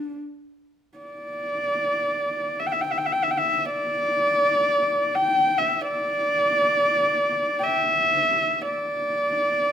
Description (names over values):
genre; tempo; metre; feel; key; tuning
mongolian traditional, Mongolian folk; free time; none; none; unclear; A4 = 438 Hz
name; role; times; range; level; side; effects
warm horsehead fiddle; solo; 0.0-9.7 s; D4 to G5; -21 LUFS; equal; none
room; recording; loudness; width
light reverb; close, detailed microphones; -20 LUFS; side -9 dB against mid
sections
0.4-9.7 A section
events
none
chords
none